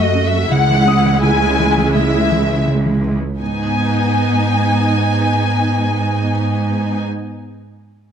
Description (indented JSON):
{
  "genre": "cinematic",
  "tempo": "83 BPM",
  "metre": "4/4",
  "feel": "straight",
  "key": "G# phrygian",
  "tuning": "A4 = 440 Hz",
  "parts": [
    { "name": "warm symphonic violin section", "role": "melody", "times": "0.0-7.0 s", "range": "D#5 to G#5", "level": "-19 LUFS", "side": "left 4 dB", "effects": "none" },
    { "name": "clear symphonic viola section", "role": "accompaniment", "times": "0.0-7.0 s", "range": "G#3 to F#4", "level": "-20 LUFS", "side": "right 1 dB", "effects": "none" },
    { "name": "soft round pluck", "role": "arpeggios", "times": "0.0-3.3 s", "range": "C#3 to C#4", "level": "-23 LUFS", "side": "left 2 dB", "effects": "none" },
    { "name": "rich symphonic cello section", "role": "bass", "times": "0.0-7.0 s", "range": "C#2 to G#2", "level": "-17 LUFS", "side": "right 2 dB", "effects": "none" },
    { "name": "clear concert grand piano", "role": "texture", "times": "0.0-3.4 s", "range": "E5 to D#6", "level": "-30 LUFS", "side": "left 3 dB", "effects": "none" }
  ],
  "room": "moderate concert hall reverb, RT60 1.8 s",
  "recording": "close, detailed microphones",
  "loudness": "-13 LUFS",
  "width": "side -8 dB against mid",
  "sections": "0.0-3.4 A section; 3.4-6.3 B section",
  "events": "none",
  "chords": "0.0 F#m; 0.5 C#m; 3.4 G#m"
}